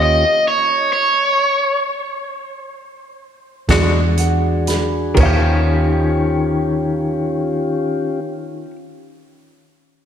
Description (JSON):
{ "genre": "slow blues", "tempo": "40-45 BPM (dotted quarters)", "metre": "12/8", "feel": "straight", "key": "Eb mixolydian", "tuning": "A4 = 440 Hz", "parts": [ { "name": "raw garage guitar", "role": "melody", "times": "0.0-1.8 s", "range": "Db5 to Eb5", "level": "-16 LUFS", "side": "right 1 dB", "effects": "overdrive, slapback echo, analog delay" }, { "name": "dark upright piano", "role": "accompaniment", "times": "0.0-8.2 s", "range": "F4 to B5", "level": "-24 LUFS", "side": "right 4 dB", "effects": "slapback echo" }, { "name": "mellow tonewheel organ", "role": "sustained chords", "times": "0.0-8.2 s", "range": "Bb3 to G#4", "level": "-22 LUFS", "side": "left 1 dB", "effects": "slow rotary speaker" }, { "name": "vintage muted fingered electric bass", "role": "bass", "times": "0.0-8.2 s", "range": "Eb2 to E2", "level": "-18 LUFS", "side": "equal", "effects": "none" }, { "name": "semi-hollow electric guitar", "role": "accompaniment", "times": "3.7-8.8 s", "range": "Eb3 to G4", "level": "-22 LUFS", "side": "left 3 dB", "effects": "tremolo" }, { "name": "vintage drum kit", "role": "drums", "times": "3.7-5.4 s", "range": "crash cymbal, hi-hat, kick drum, snare drum", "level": "-21 LUFS", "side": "right 1 dB", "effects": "none" } ], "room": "wet concert hall reverb, RT60 2.3 s", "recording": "big arena sound", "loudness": "-14 LUFS", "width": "side -8 dB against mid", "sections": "0.0-5.2 A section; 5.2-10.1 B section", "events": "slowing down 0.0-5.2; stop 0.0-3.7; upright piano fill 3.7-5.2", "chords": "0.0 Eb13; 3.7 E9; 5.2 Eb13" }